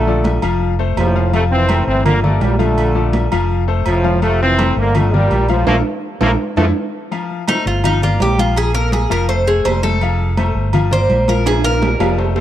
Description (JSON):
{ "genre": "latin, salsa", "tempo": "166 BPM", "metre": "4/4", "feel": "straight", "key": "F major", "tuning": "A4 = 440 Hz", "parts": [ { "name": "bright trombone section", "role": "melody", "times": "0.0-6.7 s", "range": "A2 to C4", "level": "-18 LUFS", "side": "right 1 dB", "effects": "none" }, { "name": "fingered electric bass", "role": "bass", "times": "0.0-12.4 s", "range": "F1 to F2", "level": "-17 LUFS", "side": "right 1 dB", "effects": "none" }, { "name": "bright concert grand piano", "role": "accompaniment", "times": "0.1-12.4 s", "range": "F3 to F5", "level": "-21 LUFS", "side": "left 10 dB", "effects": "none" }, { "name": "congas", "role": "percussion", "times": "0.1-12.4 s", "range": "none", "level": "-22 LUFS", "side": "equal", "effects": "none" }, { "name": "agogo bells and timbales", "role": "percussion", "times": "0.2-12.4 s", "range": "none", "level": "-24 LUFS", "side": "right 5 dB", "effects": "none" }, { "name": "Cuban tres", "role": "melody", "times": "7.5-12.2 s", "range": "Eb4 to C5", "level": "-18 LUFS", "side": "right 1 dB", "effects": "none" } ], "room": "small room ambience", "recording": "dry, close 1970s-style studio recording", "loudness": "-13 LUFS", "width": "side -12 dB against mid", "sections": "0.0-7.1 A section; 7.1-12.4 B section", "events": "drum fill 5.7-7.1, 11.5-12.4; band accent 5.7-7.1; Cuban tres solo 7.1-12.4", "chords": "0.0 Bbmaj7; 0.6 Fmaj7; 2.1 Gm7; 2.8 Bbmaj7; 3.5 Fmaj7; 4.9 Gm7; 5.7 Bb5; 6.4 Fmaj7; 7.1 F; 7.8 Gm7; 8.6 Bb5; 9.3 F; 10.7 Gm7; 11.5 Bb5" }